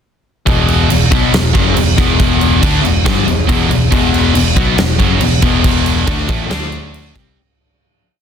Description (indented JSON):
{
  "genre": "hard rock",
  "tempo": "139 BPM",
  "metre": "4/4",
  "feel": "straight",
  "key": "E minor",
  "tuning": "A4 = 440 Hz",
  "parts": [
    { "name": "crunchy overdriven guitar", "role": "riff", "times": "0.5-7.4 s", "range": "E2 to D4", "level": "-16 LUFS", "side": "left 12 dB", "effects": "none" },
    { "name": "high-gain distorted guitar", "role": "riff", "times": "0.5-7.4 s", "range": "E2 to D4", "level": "-18 LUFS", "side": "right 13 dB", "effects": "distortion" },
    { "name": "picked electric bass", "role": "bass", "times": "0.5-7.3 s", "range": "E1 to D2", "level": "-16 LUFS", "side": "equal", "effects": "none" },
    { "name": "huge arena drum kit", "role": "drums", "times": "0.5-7.3 s", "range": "crash cymbal, kick drum, snare drum", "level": "-14 LUFS", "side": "right 1 dB", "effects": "none" }
  ],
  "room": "little or no reverb",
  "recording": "dense, heavily limited modern master",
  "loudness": "-10 LUFS",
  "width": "side -8 dB against mid",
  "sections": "0.5-7.4 riff",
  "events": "fade-out 5.6-7.4",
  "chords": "0.5 Em; 6.5 D5; 7.1 C5"
}